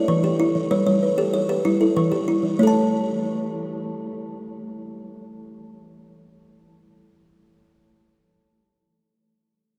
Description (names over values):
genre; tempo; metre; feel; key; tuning
southern african traditional, mbira-style interlocking cycle; 127 BPM (dotted quarters); 12/8; straight; unclear; A4 = 440 Hz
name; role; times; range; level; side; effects
buzzing kalimba; arpeggios; 0.0-7.7 s; E3 to A5; -26 LUFS; equal; none
kalimba; arpeggios; 0.0-7.7 s; E3 to A5; -25 LUFS; equal; none
room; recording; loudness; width
wet cathedral reverb, RT60 6.3 s; in a vast, echoing space; -21 LUFS; mono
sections
0.0-2.6 A section; 2.6-6.4 B section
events
none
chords
0.0 Em; 2.6 N.C.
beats
0.24 | 0.71 1.18 1.65 2.12 | 2.59 3.06 3.53 4.00 | 4.47 4.95 5.42 5.89